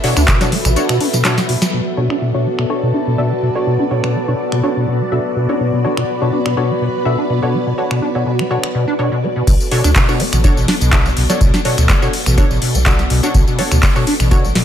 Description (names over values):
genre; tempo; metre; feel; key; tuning
acid house; 124 BPM; 4/4; swing 54% on 16ths; B minor; A4 = 440 Hz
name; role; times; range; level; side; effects
string machine, full ensemble; sustained chords; 0.0-14.6 s; B3 to E5; -22 LUFS; equal; phaser, ensemble chorus, sidechain pumping
deep acid bass; riff; 0.0-14.6 s; B2 to D4; -18 LUFS; equal; overdrive, lush chorus, sidechain pumping, ping-pong delay
filtered dub chord stab; stabs; 0.0-14.4 s; D4 to E5; -22 LUFS; left 1 dB; chorus, ping-pong delay
booming analog drum machine; drums; 0.0-14.6 s; crash cymbal, finger snaps, handclaps, hi-hat, snare drum, tambourine; -19 LUFS; equal; low-pass filter on hats, low-pass filter on perc, low-pass filter on snare, low-pass filter on cymbals
soft-mallet drum kit; drums; 0.0-1.4, 9.5-14.6 s; hi-hat, ride cymbal, snare drum; -30 LUFS; left 2 dB; sidechain pumping on cymbals, high-pass filter on cymbals, sidechain pumping on hats, high-pass filter on hats, high-pass filter on snare, high-pass filter on room
airy breathy pad; texture; 0.0-9.5 s; F#4 to B5; -24 LUFS; equal; chorus, sidechain pumping
warm sub bass; bass; 0.2-0.8, 9.5-14.5 s; A1 to D2; -16 LUFS; equal; sidechain pumping
electronic kick drum; drums; 0.3-0.4, 9.5-14.4 s; none; -14 LUFS; equal; none
room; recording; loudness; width
light reverb; none; -13 LUFS; side -10 dB against mid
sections
0.0-1.7 A section; 1.7-9.5 B section; 9.5-14.6 A section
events
drop 0.0-1.7, 9.5-14.6; drum fill 1.2-1.7; band accent 1.6; filter sweep on drum 1.7-9.5; filter sweep on synth stab 1.7-9.5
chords
0.0 Bm7